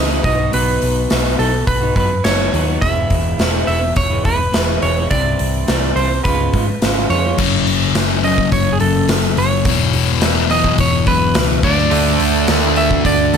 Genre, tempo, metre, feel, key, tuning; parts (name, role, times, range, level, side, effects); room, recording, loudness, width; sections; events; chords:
quiet-loud alternative rock; 105 BPM; 4/4; straight; E major; A4 = 441 Hz
clean electric guitar; melody; 0.0-13.4 s; G#4 to E5; -20 LUFS; right 3 dB; tape echo
electric guitar through a small old amp; arpeggios; 0.0-11.9 s; E2 to F#4; -22 LUFS; equal
hollow-body short-scale picked electric bass; bass; 0.0-13.4 s; E1 to G#2; -20 LUFS; equal
big rock drum kit; drums; 0.2-13.4 s; crash cymbal, hi-hat, kick drum, snare drum; -18 LUFS; equal
sludgy distorted guitar; riff; 7.4-13.4 s; E2 to D4; -17 LUFS; left 14 dB; overdrive
crunchy overdriven guitar; riff; 11.9-13.4 s; D3 to D4; -17 LUFS; right 15 dB
light reverb; -13 LUFS; side -7 dB against mid
0.0-7.4 A section; 7.4-13.4 B section
0.3 B; 2.8 E; 5.1 C; 6.2 C#7; 7.4 F#m; 9.7 Esus2; 11.6 D